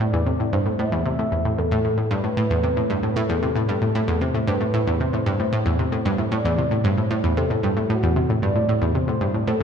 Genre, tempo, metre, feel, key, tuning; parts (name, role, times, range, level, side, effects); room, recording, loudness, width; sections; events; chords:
ambient, sequencer-driven space music; 114 BPM; 4/4; straight; A dorian; A4 = 440 Hz
mellow horn-like synth lead; melody; 0.0-9.6 s; F#4 to E5; -26 LUFS; equal; chorus, ping-pong delay
analog pluck; riff; 0.0-9.6 s; E2 to C3; -20 LUFS; equal; chorus, ping-pong delay
wet concert hall reverb, RT60 2.0 s; dark, warm production; -19 LUFS; side -7 dB against mid
0.0-9.6 A section
0.0 Am